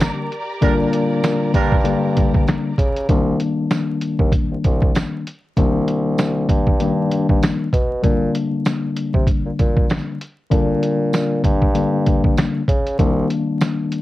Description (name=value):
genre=hip hop, boom-bap hip-hop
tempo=97 BPM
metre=4/4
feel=swing 57% on 16ths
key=C minor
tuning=A4 = 440 Hz
part: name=mellow tine electric piano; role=accompaniment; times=0.0-14.0 s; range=C2 to D4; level=-20 LUFS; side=left 4 dB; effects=medium stereo tremolo, cassette tape, high-pass filter, low-pass filter
part: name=clear studio string section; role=sustained chords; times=0.0-3.1 s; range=G4 to Bb5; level=-30 LUFS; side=right 1 dB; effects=high-pass filter, low-pass filter, cassette tape
part: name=trip hop sampler-style drum kit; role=drums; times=0.0-14.0 s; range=hi-hat, kick drum, snare drum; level=-18 LUFS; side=equal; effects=cassette tape
part: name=tambourine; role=percussion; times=0.0-13.8 s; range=none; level=-40 LUFS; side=right 10 dB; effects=none
part: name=warm horn section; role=stabs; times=0.6-1.7 s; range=G3 to Bb4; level=-27 LUFS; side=right 9 dB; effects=high-pass filter, low-pass filter, cassette tape, tape echo
part: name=mellow bassoon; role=bass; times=0.6-13.3 s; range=C2 to Db3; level=-22 LUFS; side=right 1 dB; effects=transformer saturation
room=light reverb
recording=home recording on cassette, vinyl crackle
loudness=-16 LUFS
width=side -16 dB against mid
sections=0.0-3.1 A section; 3.1-14.0 B section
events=none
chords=0.0 Gm/Bb; 3.1 Cm7; 8.0 Gm/Bb; 13.0 Cm7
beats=0.00 | 0.62 1.24 1.85 2.47 | 3.09 3.71 4.33 4.95 | 5.57 6.18 6.80 7.42 | 8.04 8.66 9.28 9.89 | 10.51 11.13 11.75 12.37 | 12.99 13.61